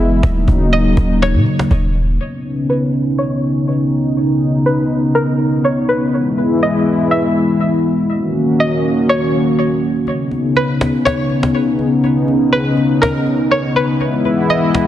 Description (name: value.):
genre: hip hop, atmospheric cloud-rap.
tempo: 122 BPM.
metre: 4/4.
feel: half-time.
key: B major.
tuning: A4 = 440 Hz.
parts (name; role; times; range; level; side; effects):
string-like resonator pluck; melody; 0.0-14.9 s; A#4 to E5; -20 LUFS; equal; chorus, low-pass filter, tape echo.
dark analog pad; sustained chords; 0.0-14.9 s; C#3 to F#4; -14 LUFS; left 1 dB; chorus, low-pass filter.
warm 808-style bass; bass; 0.0-2.2 s; D#1 to A#2; -15 LUFS; equal; none.
cajon; drums; 0.2-2.0, 10.1-14.9 s; none; -21 LUFS; equal; vintage 12-bit sampler grit.
room: light reverb.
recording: dense, heavily limited modern master.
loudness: -13 LUFS.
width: side -12 dB against mid.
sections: 0.0-2.2 A section; 2.2-10.1 B section; 10.1-14.9 C section.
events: filter sweep 2.2-10.1; kick muted 10.1-14.9.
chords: 0.2 D#m7; 2.2 Badd9; 6.1 Emaj7; 8.1 D#m7; 10.1 Badd9; 14.0 Emaj7.